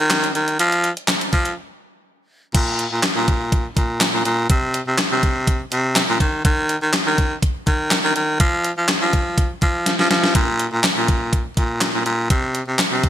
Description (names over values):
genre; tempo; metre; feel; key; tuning
dance-pop; 123 BPM; 4/4; straight; unclear; A4 = 436 Hz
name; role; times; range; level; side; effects
growling baritone saxophone; bass; 0.0-13.1 s; Bb2 to F3; -19 LUFS; equal; sidechain pumping
crisp 8-bit digital drum machine; drums; 0.1-13.1 s; crash cymbal, handclaps, hi-hat, kick drum, snare drum; -18 LUFS; equal; gated reverb
room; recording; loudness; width
light reverb; bright 1980s-style digital production; -16 LUFS; side -11 dB against mid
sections
0.0-2.5 A section; 2.5-13.1 B section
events
break 1.6-2.5; drum fill 9.9-10.4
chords
none